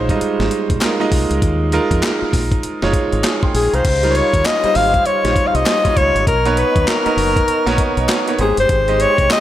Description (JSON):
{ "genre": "R&B, new jack swing", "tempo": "99 BPM", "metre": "4/4", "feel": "swing 61% on 16ths", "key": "unclear", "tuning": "A4 = 441 Hz", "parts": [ { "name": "clear concert grand piano", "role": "accompaniment", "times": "0.0-9.4 s", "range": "G3 to C6", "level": "-19 LUFS", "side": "right 3 dB", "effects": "none" }, { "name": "deep dub fingered electric bass", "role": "bass", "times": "0.0-9.3 s", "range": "F1 to F2", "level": "-20 LUFS", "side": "equal", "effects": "none" }, { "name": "breakbeat sampler-style drum kit", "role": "drums", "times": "0.1-9.4 s", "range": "crash cymbal, handclaps, hi-hat, kick drum, snare drum", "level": "-20 LUFS", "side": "equal", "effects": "gated reverb" }, { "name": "group handclap", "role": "percussion", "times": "0.8-9.4 s", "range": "none", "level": "-30 LUFS", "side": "left 2 dB", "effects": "none" }, { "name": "breathy alto saxophone", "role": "melody", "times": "3.6-9.4 s", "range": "Ab4 to F5", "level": "-16 LUFS", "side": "left 2 dB", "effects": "none" }, { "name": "mellow hollow flute section", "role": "sustained chords", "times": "3.9-9.4 s", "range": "G4 to C#6", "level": "-25 LUFS", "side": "right 1 dB", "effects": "none" } ], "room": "light reverb, small room ambience", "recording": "none", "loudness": "-13 LUFS", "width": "side -12 dB against mid", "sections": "0.0-3.8 A section; 3.8-9.4 B section", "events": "none", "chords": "0.0 Eb9sus4; 3.8 Dbmaj9#11; 6.3 Bmaj9; 8.4 Abmaj7", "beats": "0.21 0.82 | 1.42 2.03 2.63 3.24 | 3.85 4.45 5.06 5.66 | 6.27 6.88 7.48 8.09 | 8.69 9.30" }